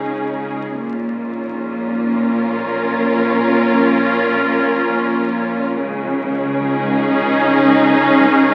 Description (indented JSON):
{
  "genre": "cinematic, suspense film score",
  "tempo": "95 BPM",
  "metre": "4/4",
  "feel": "straight",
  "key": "unclear",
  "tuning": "A4 = 439 Hz",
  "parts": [
    { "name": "muted studio violin section", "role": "melody", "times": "0.0-8.5 s", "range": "G#4 to A#4", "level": "-25 LUFS", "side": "equal", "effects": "none" },
    { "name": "muted chamber violin section", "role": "second line", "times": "0.0-8.5 s", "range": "D#4 to E#4", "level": "-25 LUFS", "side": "equal", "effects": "none" },
    { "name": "muted studio viola section", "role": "accompaniment", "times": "0.0-8.5 s", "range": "C#4", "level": "-22 LUFS", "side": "equal", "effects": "none" },
    { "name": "deep dark ambient pad", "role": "sustained chords", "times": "0.0-8.5 s", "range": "D#4 to C#5", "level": "-32 LUFS", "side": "equal", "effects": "none" },
    { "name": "muted chamber double bass section", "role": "bass", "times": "0.0-8.5 s", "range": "A#1 to C#2", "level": "-30 LUFS", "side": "equal", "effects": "none" },
    { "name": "muted symphonic cello section", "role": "bass", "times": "0.0-8.5 s", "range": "A#2 to C#3", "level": "-23 LUFS", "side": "equal", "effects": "none" },
    { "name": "dark French horn section", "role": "sustained chords", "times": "0.7-8.5 s", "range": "C#4 to E#4", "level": "-26 LUFS", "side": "equal", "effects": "none" },
    { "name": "timpani", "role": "percussion", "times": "5.8-8.5 s", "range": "C#3", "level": "-34 LUFS", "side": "equal", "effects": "none" }
  ],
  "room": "wet scoring stage reverb, RT60 1.5 s",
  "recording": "very old 78 rpm record, vinyl crackle, nothing above 10.8 kHz",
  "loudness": "-17 LUFS",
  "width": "mono",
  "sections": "0.0-8.5 A section",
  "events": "timpani fill 5.8-8.5",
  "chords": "0.0 C#sus2; 0.8 A#m; 5.8 C#sus2"
}